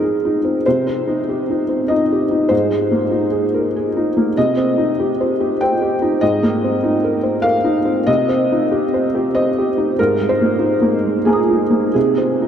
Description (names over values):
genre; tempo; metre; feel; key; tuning
neoclassical minimalist piano; 96 BPM; 3/4; rubato; Ab major; A4 = 437 Hz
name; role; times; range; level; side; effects
felt-muted upright piano; solo; 0.0-12.5 s; Ab2 to Eb6; -14 LUFS; equal; none
room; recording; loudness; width
wet huge ambient reverb, RT60 8.8 s; in a vast, echoing space; -14 LUFS; side -8 dB against mid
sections
0.0-12.5 A section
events
none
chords
0.0 Abadd9; 0.7 Cm; 2.5 Abadd9; 4.4 Cm; 6.2 Abadd9; 8.1 Cm; 10.0 Abadd9; 12.0 N.C.